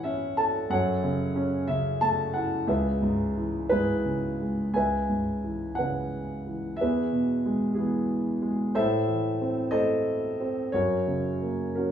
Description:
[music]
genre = classical, lyrical solo piano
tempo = 57-63 BPM (dotted quarters)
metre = 6/8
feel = rubato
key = C# minor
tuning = A4 = 439 Hz
[part]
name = dark concert grand piano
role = solo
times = 0.0-11.9 s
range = C#2 to A5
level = -24 LUFS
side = equal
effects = none
[sound]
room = light reverb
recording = studio ambience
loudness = -24 LUFS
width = side -9 dB against mid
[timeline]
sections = 0.0-4.8 A section; 4.8-11.9 B section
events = none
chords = 0.0 Aadd9; 0.7 F#m7; 2.7 C#m7; 6.8 E; 8.7 Am; 10.7 F#

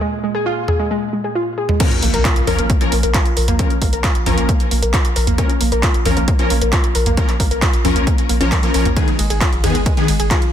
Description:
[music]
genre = driving peak-time techno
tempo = 134 BPM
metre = 4/4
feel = straight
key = Bb phrygian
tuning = A4 = 441 Hz
[part]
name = warbly dusty pluck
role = riff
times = 0.0-10.4 s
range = Ab3 to Bb4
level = -21 LUFS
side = equal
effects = chorus, overdrive, sidechain pumping, ping-pong delay
[part]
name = metallic inharmonic drone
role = drone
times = 0.1-1.8 s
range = Bb2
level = -33 LUFS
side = right 2 dB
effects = chorus, built-in reverb, sidechain pumping
[part]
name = techno drum kit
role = drums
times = 0.7-10.5 s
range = crash cymbal, handclaps, hi-hat, ride cymbal, toms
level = -21 LUFS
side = right 1 dB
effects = overdrive
[part]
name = rave stab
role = stabs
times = 1.8-10.1 s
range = Eb3 to Bb4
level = -21 LUFS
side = left 2 dB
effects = chorus, built-in reverb, sidechain pumping, digital delay
[part]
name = electronic kick drum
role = drums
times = 1.8-10.4 s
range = none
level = -17 LUFS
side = equal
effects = none
[part]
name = impact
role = sound effects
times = 1.8-3.6 s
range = none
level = -25 LUFS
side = equal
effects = none
[part]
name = saturated sub bass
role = bass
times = 2.0-10.3 s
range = Ab1 to Bb1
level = -19 LUFS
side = equal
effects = overdrive, sidechain pumping, low-pass filter
[sound]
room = light reverb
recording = dense, heavily limited modern master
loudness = -14 LUFS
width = side -10 dB against mid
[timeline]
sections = 0.0-1.8 A section; 1.8-10.5 B section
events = drop 1.8-10.5; impact 1.8-3.6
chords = 0.0 Fmadd11/Bb (rootless); 1.8 Bbm; 9.0 Abm

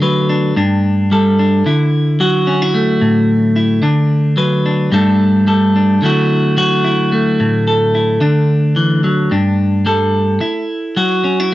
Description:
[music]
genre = highlife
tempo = 110 BPM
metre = 4/4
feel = swing 55% on 16ths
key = D major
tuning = A4 = 443 Hz
[part]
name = clean electric guitar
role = solo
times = 0.0-11.5 s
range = G2 to B4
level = -11 LUFS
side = equal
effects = cassette tape
[sound]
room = little or no reverb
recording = home recording on cassette, nothing above 7.6 kHz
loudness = -11 LUFS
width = side -15 dB against mid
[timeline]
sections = 0.0-11.5 A section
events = none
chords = 0.0 Bm7/D; 0.6 Gsus2; 1.6 Dadd9; 3.8 Bm7/D; 4.9 Gsus2; 6.0 Dadd9; 9.3 Gsus2; 10.4 Dadd9 (rootless)

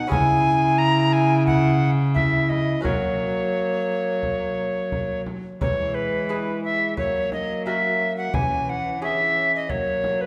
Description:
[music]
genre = classical, renaissance-style consort dance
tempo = 88 BPM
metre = 4/4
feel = straight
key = C# dorian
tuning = A4 = 439 Hz
[part]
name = alto recorder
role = melody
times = 0.0-10.3 s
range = B4 to A#5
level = -25 LUFS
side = equal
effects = none
[part]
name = clear trombone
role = accompaniment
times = 0.0-10.3 s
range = G#3 to E4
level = -30 LUFS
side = equal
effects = none
[part]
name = lute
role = accompaniment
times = 0.0-10.3 s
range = C#3 to B4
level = -37 LUFS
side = equal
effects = none
[part]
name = rich cello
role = bass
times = 0.0-10.3 s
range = C#3 to F#3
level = -28 LUFS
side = equal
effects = none
[part]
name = frame drum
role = percussion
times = 0.1-10.3 s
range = none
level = -32 LUFS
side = equal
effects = none
[sound]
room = wet recital hall reverb, RT60 1.6 s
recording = recorded in a church or concert hall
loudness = -22 LUFS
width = mono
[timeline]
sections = 0.0-5.6 A section; 5.6-10.3 B section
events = none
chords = 0.1 C#m; 2.8 F#; 5.6 E; 7.0 F#; 8.3 C#m/E; 9.7 F#

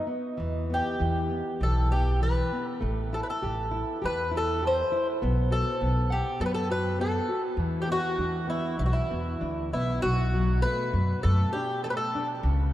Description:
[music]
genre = fado-style ballad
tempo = 100 BPM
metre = 4/4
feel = rubato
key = E minor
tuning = A4 = 440 Hz
[part]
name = fingerpicked twelve-string acoustic guitar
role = melody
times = 0.0-12.3 s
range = E4 to C5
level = -29 LUFS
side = equal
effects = none
[part]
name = nylon-string guitar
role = accompaniment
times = 0.0-12.7 s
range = B2 to F#5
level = -32 LUFS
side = left 1 dB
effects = none
[part]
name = upright bass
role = bass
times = 0.4-12.7 s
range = A1 to F#2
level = -27 LUFS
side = equal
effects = none
[sound]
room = moderate cathedral reverb, RT60 5.8 s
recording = in a vast, echoing space, lossy compression artefacts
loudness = -25 LUFS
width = side -13 dB against mid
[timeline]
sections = 0.0-10.0 A section; 10.0-12.7 B section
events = none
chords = 0.4 Em; 2.8 A5; 5.2 B5; 7.6 E5; 10.0 Bm7

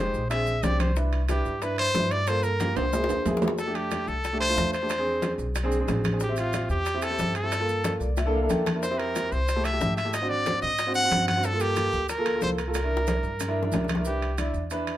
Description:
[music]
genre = Afro-Cuban jazz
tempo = 183 BPM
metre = 4/4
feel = straight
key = C major, F major from 3.6 s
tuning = A4 = 440 Hz
[part]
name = brilliant trumpet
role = melody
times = 0.0-14.6 s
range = E4 to Gb5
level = -27 LUFS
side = equal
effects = none
[part]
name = warm concert grand piano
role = accompaniment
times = 0.0-14.9 s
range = Ab3 to A5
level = -30 LUFS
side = equal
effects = none
[part]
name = upright bass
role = bass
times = 0.0-15.0 s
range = Ab1 to Ab2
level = -30 LUFS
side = equal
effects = none
[part]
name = bongos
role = percussion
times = 0.1-14.0 s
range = none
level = -36 LUFS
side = left 4 dB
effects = none
[part]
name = congas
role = percussion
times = 0.1-15.0 s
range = none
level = -32 LUFS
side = left 1 dB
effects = none
[part]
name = maracas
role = percussion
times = 0.1-14.9 s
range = none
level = -42 LUFS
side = right 4 dB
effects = none
[part]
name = timbales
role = percussion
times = 0.3-15.0 s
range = none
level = -35 LUFS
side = right 4 dB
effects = none
[sound]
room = wet small room reverb, RT60 0.6 s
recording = minimal, uncompressed stereo recording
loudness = -23 LUFS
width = side -13 dB against mid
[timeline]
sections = 0.0-3.6 A section; 3.6-14.1 B section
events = drum fill 2.8-3.6, 7.8-8.8, 12.7-14.1; grand piano fill 7.8-8.8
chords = 0.3 Bb9; 1.0 Cmaj9; 2.3 Gm7; 2.9 C7alt; 3.6 F69; 4.9 E7b13; 6.2 Am7; 7.5 Gm9; 8.2 C13; 8.8 Fmaj7; 10.1 Ab7#11; 11.4 Gm9; 12.7 C9; 14.1 Cmaj9

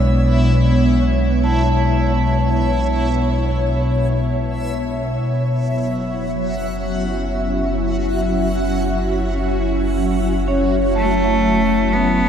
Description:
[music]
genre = ambient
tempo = free time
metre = none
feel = none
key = F# minor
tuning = A4 = 440 Hz
[part]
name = ethereal airy pad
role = sustained chords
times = 0.0-12.3 s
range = B2 to E5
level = -19 LUFS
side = left 1 dB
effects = ensemble chorus, built-in reverb
[part]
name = vibraphone with medium hard mallets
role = arpeggios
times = 0.0-5.3, 10.5-12.3 s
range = G#3 to A5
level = -22 LUFS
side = right 1 dB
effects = diffuse ambient delay
[part]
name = warm sub bass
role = bass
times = 0.0-12.3 s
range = F#1 to B1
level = -21 LUFS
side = equal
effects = none
[part]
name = backwards swelling texture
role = texture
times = 0.0-12.3 s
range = E4 to F#5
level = -28 LUFS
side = equal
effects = built-in reverb
[part]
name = bright cello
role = melody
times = 11.0-12.3 s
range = A3 to B3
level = -19 LUFS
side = left 1 dB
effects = none
[sound]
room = moderate huge ambient reverb, RT60 6.9 s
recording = dark, warm production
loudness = -16 LUFS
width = side -8 dB against mid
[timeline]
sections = 0.0-12.3 A section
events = fade-out on synth texture 0.0-12.3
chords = 0.0 Bm7; 5.2 F#m7

